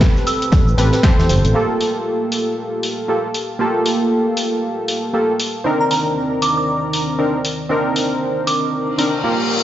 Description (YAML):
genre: deep house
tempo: 117 BPM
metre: 4/4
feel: swing 60% on 16ths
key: G minor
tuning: A4 = 438 Hz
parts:
  - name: warm analog keys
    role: stabs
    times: 0.0-9.6 s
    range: Bb3 to C5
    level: -18 LUFS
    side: equal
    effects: chorus, sidechain pumping, dub echo
  - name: deep house drum kit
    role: drums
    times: 0.0-9.1 s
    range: cabasa, hi-hat, snare drum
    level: -23 LUFS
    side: left 1 dB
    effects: overdrive
  - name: electronic kick drum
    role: drums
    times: 0.0-1.2 s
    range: none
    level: -14 LUFS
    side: equal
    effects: none
  - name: snare drum and tambourine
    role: drums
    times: 0.0-1.4 s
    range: none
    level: -30 LUFS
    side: right 1 dB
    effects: high-pass filter on hats, high-pass filter on snare, high-pass filter on perc, high-pass filter on room
  - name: glassy synth bell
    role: melody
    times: 0.3-0.8, 5.8-9.0 s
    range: Bb5 to E6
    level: -22 LUFS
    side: right 2 dB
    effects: chorus, digital delay
  - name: fingered electric bass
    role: bass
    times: 0.5-1.5 s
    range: G1 to E2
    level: -15 LUFS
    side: equal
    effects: sidechain pumping
  - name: warm analog pad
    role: sustained chords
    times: 1.5-9.2 s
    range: Eb3 to Bb5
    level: -25 LUFS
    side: left 1 dB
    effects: chorus, sidechain pumping
  - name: reverse cymbal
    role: sound effects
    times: 9.0-9.6 s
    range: none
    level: -22 LUFS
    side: left 5 dB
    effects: none
room: moderate plate reverb, RT60 1.4 s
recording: played on a big sound system in a bare room, stone room reverb, nothing above 7.7 kHz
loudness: -15 LUFS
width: side -12 dB against mid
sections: 0.0-1.6 A section; 1.6-9.6 B section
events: filter sweep on synth keys 0.0-1.6; reverse cymbal 9.0-9.6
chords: 0.0 Am9; 1.6 Gm9; 5.7 Cm9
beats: 0.01 0.52 1.04 | 1.55 2.06 2.58 3.09 | 3.60 4.11 4.63 5.14 | 5.65 6.17 6.68 7.19 | 7.70 8.22 8.73 9.24